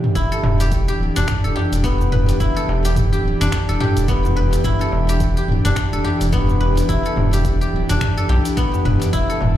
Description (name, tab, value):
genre	organic downtempo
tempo	107 BPM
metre	4/4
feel	swing 59% on 16ths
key	E minor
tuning	A4 = 440 Hz
part	airy breathy pad	sustained chords	0.0-9.6 s	E3 to A4	-25 LUFS	right 3 dB	chorus, sidechain pumping
part	guzheng	arpeggios	0.0-9.6 s	B3 to B4	-22 LUFS	left 3 dB	ping-pong delay
part	deep house drum kit	drums	0.0-9.5 s	cabasa, finger snaps, hi-hat, toms	-23 LUFS	equal	overdrive
part	round analog bass	bass	0.2-9.6 s	D1 to B1	-19 LUFS	equal	sidechain pumping
part	electronic kick drum	drums	0.2-9.3 s	none	-24 LUFS	equal	overdrive
part	darbuka	percussion	0.4-9.5 s	none	-24 LUFS	left 1 dB	none
room	little or no reverb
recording	played on a big sound system in a bare room, large studio reverb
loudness	-16 LUFS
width	side -12 dB against mid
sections	0.2-9.6 A section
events	break 0.0; drum fill 0.0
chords	0.2 Em7